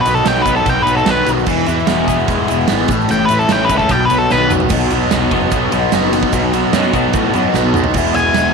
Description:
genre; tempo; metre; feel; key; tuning
classic rock; 148 BPM; 4/4; straight; unclear; A4 = 440 Hz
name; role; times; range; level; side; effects
octave-fuzz lead guitar; melody; 0.0-4.5, 8.2-8.5 s; A4 to G#5; -16 LUFS; left 1 dB; distortion, slapback echo
picked swing-style acoustic guitar; accompaniment; 0.0-8.5 s; E2 to F#4; -24 LUFS; right 12 dB; none
biting overdriven guitar; riff; 0.0-8.5 s; A2 to E4; -17 LUFS; left 14 dB; phaser
raw garage guitar; riff; 0.0-8.5 s; A2 to E4; -20 LUFS; right 15 dB; overdrive
fuzz picked electric bass; bass; 0.1-8.5 s; E1 to A2; -21 LUFS; equal; overdrive
huge arena drum kit; drums; 0.1-8.4 s; crash cymbal, kick drum, ride cymbal, snare drum, toms; -19 LUFS; right 5 dB; none
egg shaker; percussion; 0.1-8.5 s; none; -35 LUFS; right 20 dB; none
room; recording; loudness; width
light reverb, small room ambience; 1960s-style stereo with parts hard left and right; -12 LUFS; side -5 dB against mid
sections
0.0-4.7 A section; 4.7-8.0 B section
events
lead electric guitar solo 0.0-4.7; drum fill 4.3-4.7, 7.5-8.0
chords
0.0 B; 1.5 E; 2.9 A; 3.9 B; 8.0 E

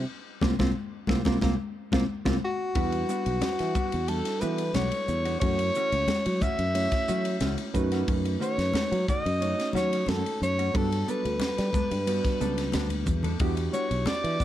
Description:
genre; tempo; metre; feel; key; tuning
electric jazz fusion; 90 BPM; 4/4; straight; E dorian; A4 = 440 Hz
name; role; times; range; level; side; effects
reed electric piano; accompaniment; 0.0-14.4 s; G3 to C#5; -33 LUFS; right 3 dB; none
sustaining fretless electric bass; bass; 0.0-14.4 s; B1 to G3; -29 LUFS; equal; analog chorus
mellow electric guitar; stabs; 0.4-14.4 s; D#3 to A4; -36 LUFS; left 1 dB; wide subtle chorus
tight funk drum kit; drums; 0.4-14.4 s; hi-hat, kick drum, ride cymbal, snare drum; -32 LUFS; equal; none
congas; percussion; 0.4-14.4 s; none; -33 LUFS; left 3 dB; none
warm soprano saxophone; melody; 2.4-14.4 s; F#4 to E5; -29 LUFS; left 1 dB; none
room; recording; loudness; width
little or no reverb; dark, warm production; -24 LUFS; side -12 dB against mid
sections
0.0-2.8 A section; 2.8-14.4 B section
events
drum fill 0.1-2.8, 12.9-13.4; band accent 0.1-2.8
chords
0.0 C7sus4; 2.8 Em9; 5.4 F#m7; 7.7 B9/F#; 10.7 Gmaj9; 13.4 Em9

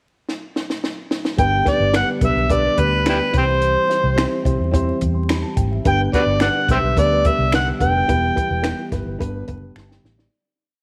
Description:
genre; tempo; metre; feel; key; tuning
uptempo 1960s-style soul; 107 BPM; 4/4; straight; G major; A4 = 440 Hz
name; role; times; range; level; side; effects
compact cocktail drum kit; drums; 0.3-10.3 s; hi-hat, kick drum, snare drum; -25 LUFS; equal; none
overdriven harmonica; melody; 1.4-8.9 s; E4 to G5; -21 LUFS; equal; none
dark upright piano; accompaniment; 1.4-10.4 s; G2 to C6; -27 LUFS; equal; none
percussive tonewheel organ; sustained chords; 1.4-10.3 s; D3 to G4; -30 LUFS; equal; slow rotary speaker, chorus vibrato
vintage muted fingered electric bass; bass; 1.4-10.2 s; E1 to E2; -24 LUFS; equal; none
finger snaps; percussion; 1.9-9.9 s; none; -33 LUFS; equal; none
room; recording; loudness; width
moderate echo chamber reverb, RT60 1.6 s, small room ambience; vinyl crackle; -19 LUFS; mono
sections
0.0-1.4 pickup bar; 1.4-10.3 A section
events
drum fill 0.3-1.4, 9.8-10.3; fade-out 8.1-10.3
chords
0.0 N.C.; 1.4 G; 3.3 C; 5.9 G; 8.1 Em; 9.2 G

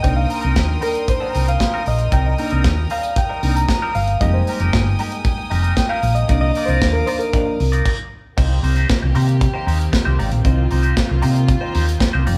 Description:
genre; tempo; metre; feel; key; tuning
disco; 115 BPM; 4/4; straight; C minor; A4 = 437 Hz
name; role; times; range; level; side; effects
barky reed electric piano; accompaniment; 0.0-7.9 s; Eb3 to Bb5; -24 LUFS; equal; none
clean electric guitar; accompaniment; 0.0-12.4 s; G3 to D5; -29 LUFS; equal; wah, spring reverb
clear studio string section; sustained chords; 0.0-12.4 s; Eb3 to Eb6; -31 LUFS; equal; none
hollow-body short-scale fingered electric bass; bass; 0.0-12.4 s; F1 to C3; -20 LUFS; equal; none
modern studio drum kit; drums; 0.0-12.4 s; crash cymbal, hi-hat, kick drum, snare drum; -23 LUFS; equal; none
room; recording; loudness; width
moderate large studio reverb, RT60 1.3 s; band playing live in one room; -18 LUFS; mono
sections
0.0-8.4 A section; 8.4-12.4 B section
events
reed electric piano solo 0.0-8.4; stop 7.9-8.4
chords
0.0 Cm7; 4.2 Fm11; 6.3 Cm11; 8.4 Cm7

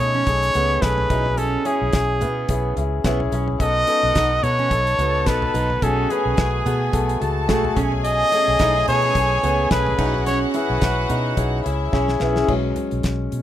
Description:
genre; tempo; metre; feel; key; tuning
piano-driven pop; 108 BPM; 4/4; swing 56% on 16ths; unclear; A4 = 439 Hz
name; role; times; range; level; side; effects
bright trumpet; melody; 0.0-11.6 s; G#4 to D#5; -21 LUFS; equal; plate reverb
warm concert grand piano; accompaniment; 0.0-13.4 s; B2 to B4; -24 LUFS; left 4 dB; none
vintage muted fingered electric bass; bass; 0.0-13.4 s; B1 to B2; -24 LUFS; equal; none
picked steel-string acoustic guitar; riff; 0.1-12.4 s; A3 to E4; -28 LUFS; right 7 dB; none
damped 70s drum kit; drums; 0.3-13.4 s; crash cymbal, hi-hat, kick drum, snare drum, toms; -25 LUFS; equal; none
clear studio violin section; second line; 3.6-12.5 s; E4 to A5; -28 LUFS; equal; plate reverb
room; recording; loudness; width
light reverb; rough home demo mix; -17 LUFS; side -12 dB against mid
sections
0.0-12.5 A section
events
drum fill 11.9-12.5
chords
0.0 Amaj7/B; 1.1 E6/B; 3.6 B7; 5.8 F#madd9/B; 7.8 Amaj7/B; 10.0 E6/B; 12.5 F#sus24/B

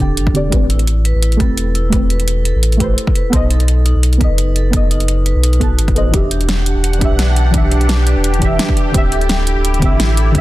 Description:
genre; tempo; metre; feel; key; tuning
liquid drum and bass; 171 BPM; 4/4; swing 54% on 16ths; E minor; A4 = 438 Hz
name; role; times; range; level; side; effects
deep mellow chord stab; accompaniment; 0.0-10.4 s; D3 to A5; -20 LUFS; equal; chorus, tape echo
vibraphone with medium hard mallets; arpeggios; 0.0-10.4 s; D4 to B4; -24 LUFS; right 2 dB; tape echo
sub bass with octave; bass; 0.0-10.4 s; D1 to B1; -14 LUFS; equal; none
electronic kick drum; drums; 0.0-10.4 s; none; -16 LUFS; equal; overdrive
pop drum kit; drums; 0.0-10.4 s; hi-hat, snare drum; -21 LUFS; right 1 dB; overdrive
lush unison pad; sustained chords; 6.4-10.4 s; D4 to F#5; -22 LUFS; equal; chorus, phaser, sidechain pumping
room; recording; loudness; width
little or no reverb; dense, heavily limited modern master; -12 LUFS; side -16 dB against mid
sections
0.0-10.4 A section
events
filter sweep on synth stab 0.0-10.4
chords
0.0 D9sus4; 0.5 Am9; 3.3 B7b9; 6.1 Em7; 8.9 D9sus4

